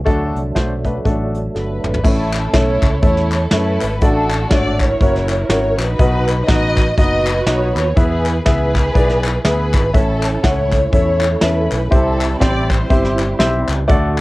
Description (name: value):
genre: uptempo gospel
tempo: 122 BPM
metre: 4/4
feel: swing 58% on 8ths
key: A major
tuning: A4 = 440 Hz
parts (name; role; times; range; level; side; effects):
- percussive tonewheel organ; sustained chords; 0.0-2.0, 9.9-14.2 s; F#3 to F#4; -26 LUFS; right 2 dB; slow rotary speaker, chorus vibrato, cassette tape
- fingered electric bass; bass; 0.0-14.2 s; F#1 to F#2; -20 LUFS; equal; none
- warm grand piano; accompaniment; 0.1-14.2 s; A2 to F#5; -20 LUFS; left 1 dB; cassette tape, plate reverb
- soft brush drum kit; drums; 0.1-14.2 s; crash cymbal, hi-hat, kick drum, snare drum, toms; -17 LUFS; equal; cassette tape
- dark studio string section; melody; 1.6-13.6 s; C4 to D#5; -20 LUFS; right 1 dB; cassette tape, plate reverb
- group handclap; percussion; 2.3-14.2 s; none; -26 LUFS; left 4 dB; none
room: light reverb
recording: home recording on cassette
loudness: -13 LUFS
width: side -20 dB against mid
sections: 0.0-2.0 A section; 2.0-14.2 B section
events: tonewheel organ solo 0.0-2.0; drum fill 1.5-2.0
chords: 0.1 D; 2.0 A; 4.0 D/A; 5.0 F#7; 6.0 B; 8.0 E; 9.9 A; 11.9 C